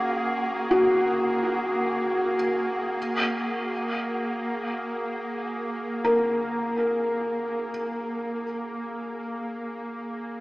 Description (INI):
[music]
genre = ambient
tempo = free time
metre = none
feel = none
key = unclear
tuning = A4 = 440 Hz
[part]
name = felt-muted upright piano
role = arpeggios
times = 0.0-10.4 s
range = Gb4 to Bb4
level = -26 LUFS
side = equal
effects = diffuse ambient delay
[part]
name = bowed-like drone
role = drone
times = 0.0-10.4 s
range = Bb3 to Ab4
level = -29 LUFS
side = equal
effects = built-in reverb
[part]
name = wind-like tuned noise texture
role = texture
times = 0.0-10.4 s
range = Gb4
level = -32 LUFS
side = equal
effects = built-in reverb
[sound]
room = wet cathedral reverb, RT60 6.0 s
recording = in a vast, echoing space, small speaker sound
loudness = -24 LUFS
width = side -21 dB against mid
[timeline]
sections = 0.0-10.4 A section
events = fade-out on synth texture 0.0-10.4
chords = 0.0 Gbmaj9/Bb; 3.0 Absus2